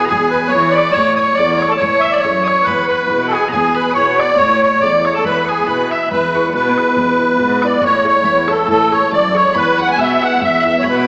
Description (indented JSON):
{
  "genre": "celtic folk, Celtic polka",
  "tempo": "140 BPM",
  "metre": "2/4",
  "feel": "swing 55% on 8ths",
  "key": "E mixolydian",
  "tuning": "A4 = 442 Hz",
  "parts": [
    { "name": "musette accordion", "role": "melody", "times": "0.0-11.1 s", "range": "G#4 to G#5", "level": "-16 LUFS", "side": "equal", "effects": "none" },
    { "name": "loud bright bagpipes", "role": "second line", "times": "0.0-6.1, 9.5-11.1 s", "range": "E5 to E6", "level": "-26 LUFS", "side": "equal", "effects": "none" },
    { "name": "mandolin", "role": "second line", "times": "0.0-11.0 s", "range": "F#5 to E6", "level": "-23 LUFS", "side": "equal", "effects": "none" },
    { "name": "dark upright piano", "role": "accompaniment", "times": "0.0-11.1 s", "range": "B2 to C#5", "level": "-24 LUFS", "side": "equal", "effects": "none" },
    { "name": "dark cello", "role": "bass", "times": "0.0-11.1 s", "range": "E2 to E3", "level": "-26 LUFS", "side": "equal", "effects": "none" },
    { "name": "bodhran", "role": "percussion", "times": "0.1-10.9 s", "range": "none", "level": "-35 LUFS", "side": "equal", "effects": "none" }
  ],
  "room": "wet scoring stage reverb, RT60 1.6 s",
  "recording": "recorded in a church or concert hall, small speaker sound",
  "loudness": "-14 LUFS",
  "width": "mono",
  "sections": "0.0-6.1 A section; 6.1-11.1 A section",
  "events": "none",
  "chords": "0.0 E; 1.0 A; 2.7 E; 4.4 A; 5.2 E; 7.8 A; 9.5 E"
}